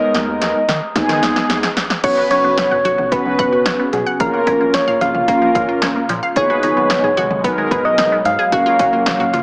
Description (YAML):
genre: synth-pop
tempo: 111 BPM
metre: 4/4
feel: straight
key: unclear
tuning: A4 = 440 Hz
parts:
  - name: soft struck synth lead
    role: melody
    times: 0.0-9.4 s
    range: Ab4 to F5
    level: -19 LUFS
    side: equal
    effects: chorus, analog delay
  - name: mellow synth brass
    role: accompaniment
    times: 0.0-9.3 s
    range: Ab3 to B4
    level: -23 LUFS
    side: equal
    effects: chorus
  - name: rubbery square bass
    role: bass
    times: 0.1-9.4 s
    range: Gb1 to Eb3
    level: -31 LUFS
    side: equal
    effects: none
  - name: punchy analog drum machine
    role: drums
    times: 0.1-9.4 s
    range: crash cymbal, hi-hat, kick drum, snare drum, toms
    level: -24 LUFS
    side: equal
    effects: analog delay
  - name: phased analog pad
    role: sustained chords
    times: 2.3-9.4 s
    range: Cb3 to F#4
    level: -27 LUFS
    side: equal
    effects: phaser, chorus
  - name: resonant blip pluck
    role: arpeggios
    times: 2.0-9.4 s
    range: F3 to F#5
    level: -25 LUFS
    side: equal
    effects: phaser, analog delay
room: wet spring reverb, RT60 2.6 s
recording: echo-heavy mix, small speaker sound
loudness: -16 LUFS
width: mono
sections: 0.0-2.0 A section; 2.0-9.4 B section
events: drum fill 0.0-2.0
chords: 0.0 Abm; 2.0 Bsus2; 4.2 Bbm; 6.4 Abm7; 8.5 Gbmaj7